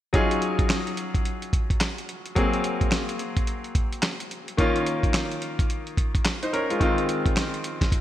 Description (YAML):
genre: R&B, new jack swing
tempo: 108 BPM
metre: 4/4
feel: swing 62% on 16ths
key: Eb dorian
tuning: A4 = 440 Hz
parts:
  - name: bright concert grand piano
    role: accompaniment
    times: 0.1-8.0 s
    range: Eb3 to C5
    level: -26 LUFS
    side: left 1 dB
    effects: none
  - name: dusty soul sampler-style drum kit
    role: drums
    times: 0.1-8.0 s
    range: handclaps, hi-hat, kick drum, snare drum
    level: -25 LUFS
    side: equal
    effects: vintage 12-bit sampler grit
room: moderate lush hall reverb, RT60 2.5 s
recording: bright 1980s-style digital production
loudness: -22 LUFS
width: side -12 dB against mid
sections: 0.1-8.0 A section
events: none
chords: 0.1 Ebm11; 2.4 Ab9; 4.6 Db69; 6.8 Fm7